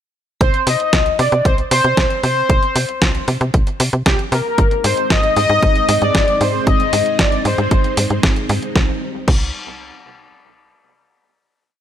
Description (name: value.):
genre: italo disco.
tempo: 115 BPM.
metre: 4/4.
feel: straight.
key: C minor.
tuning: A4 = 441 Hz.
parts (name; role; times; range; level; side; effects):
analog synth brass; melody; 0.4-8.2 s; G4 to Eb5; -17 LUFS; left 2 dB; chorus, digital delay.
tight sequencer bass; bass; 0.4-9.5 s; Ab1 to C3; -20 LUFS; equal; none.
clean 12-bit digital drum machine; drums; 0.4-9.4 s; crash cymbal, hi-hat, snare drum; -21 LUFS; equal; none.
electronic kick drum; drums; 0.4-9.4 s; none; -16 LUFS; equal; none.
string machine, full ensemble; sustained chords; 4.6-9.0 s; G3 to Eb4; -24 LUFS; right 1 dB; ensemble chorus.
room: light reverb, digital ambience.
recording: none.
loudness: -13 LUFS.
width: side -10 dB against mid.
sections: 0.4-8.8 verse; 8.8-10.8 final chord.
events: none.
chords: 0.4 Cm; 4.6 Ab; 8.8 Cm.